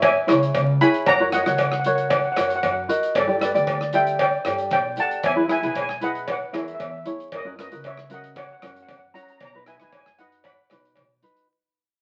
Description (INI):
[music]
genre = calypso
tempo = 115 BPM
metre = 4/4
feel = straight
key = unclear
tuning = A4 = 440 Hz
[part]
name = steel pan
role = melody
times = 0.0-10.9 s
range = A4 to B5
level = -27 LUFS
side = equal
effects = none
[part]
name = tenor ukulele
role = accompaniment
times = 0.0-11.5 s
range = C#4 to D#5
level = -25 LUFS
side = equal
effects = none
[part]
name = upright bass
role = bass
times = 0.0-11.2 s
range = G#1 to G2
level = -32 LUFS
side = equal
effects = none
[part]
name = natural country drum kit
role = drums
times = 0.0-11.5 s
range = hi-hat, kick drum, rim click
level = -36 LUFS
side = equal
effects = none
[part]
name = cowbell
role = percussion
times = 0.0-11.1 s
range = none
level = -26 LUFS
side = equal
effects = none
[sound]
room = moderate studio reverb, RT60 0.8 s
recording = very old 78 rpm record, vinyl crackle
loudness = -21 LUFS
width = mono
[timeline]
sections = 0.0-11.5 A section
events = fade-out 0.0-11.5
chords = 0.0 C#m; 1.1 F#; 3.2 Gsus2; 5.2 E; 7.3 F#; 9.4 B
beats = 0.03 0.55 | 1.07 1.59 2.11 2.63 | 3.15 3.68 4.20 4.72 | 5.24 5.76 6.28 6.80 | 7.32 7.84 8.36 8.88 | 9.40 9.93 10.45 10.96